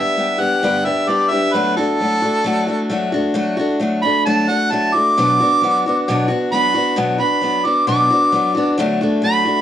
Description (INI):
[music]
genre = rock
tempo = 133 BPM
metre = 4/4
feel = straight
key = D major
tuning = A4 = 440 Hz
[part]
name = warm harmonica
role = melody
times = 0.0-9.6 s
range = A4 to D6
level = -16 LUFS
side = right 1 dB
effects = cassette tape
[part]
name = picked steel-string acoustic guitar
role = accompaniment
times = 0.0-9.6 s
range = G2 to G4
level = -18 LUFS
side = left 2 dB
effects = none
[sound]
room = little or no reverb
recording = home recording on cassette, small room ambience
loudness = -14 LUFS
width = side -10 dB against mid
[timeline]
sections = 0.0-8.8 A section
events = harmonica solo 0.0-8.8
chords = 0.0 G; 1.5 D/F#; 5.2 Bm; 8.8 D